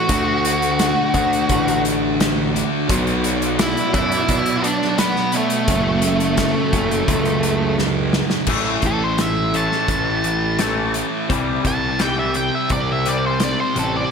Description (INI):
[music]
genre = quiet-loud alternative rock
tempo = 86 BPM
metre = 4/4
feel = straight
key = A dorian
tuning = A4 = 440 Hz
[part]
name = octave-fuzz lead guitar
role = melody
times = 0.0-14.1 s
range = A3 to A5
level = -21 LUFS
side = equal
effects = distortion, slapback echo
[part]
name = rich symphonic string section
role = sustained chords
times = 0.0-8.5 s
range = D3 to D5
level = -30 LUFS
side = left 1 dB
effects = none
[part]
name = thick fuzz guitar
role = riff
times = 0.0-14.1 s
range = F#2 to D4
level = -25 LUFS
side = left 12 dB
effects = distortion, slapback echo
[part]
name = thick fuzz guitar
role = riff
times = 0.0-14.1 s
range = F#2 to D4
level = -24 LUFS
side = right 11 dB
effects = distortion, slapback echo
[part]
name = fuzz picked electric bass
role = bass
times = 0.1-14.0 s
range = F#1 to B2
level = -24 LUFS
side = equal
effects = overdrive
[part]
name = loose indie drum kit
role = drums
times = 0.1-13.9 s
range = crash cymbal, hi-hat, kick drum, snare drum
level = -23 LUFS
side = equal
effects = none
[part]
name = twangy electric guitar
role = arpeggios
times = 8.5-14.1 s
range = A2 to A3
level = -27 LUFS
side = left 6 dB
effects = ensemble chorus, slapback echo
[sound]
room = moderate lush hall reverb, RT60 1.8 s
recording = big arena sound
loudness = -16 LUFS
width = side -6 dB against mid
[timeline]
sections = 0.0-8.5 A section; 8.5-14.1 B section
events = drum fill 7.8-8.5; lead electric guitar solo 8.5-14.1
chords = 0.1 D; 2.9 Bm; 5.7 F#m; 8.5 A5; 11.3 C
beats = | 0.10 0.80 1.50 2.20 | 2.90 3.60 4.29 4.99 | 5.69 6.39 7.09 7.79 | 8.49 9.19 9.89 10.60 | 11.30 12.00 12.70 13.41 | 14.11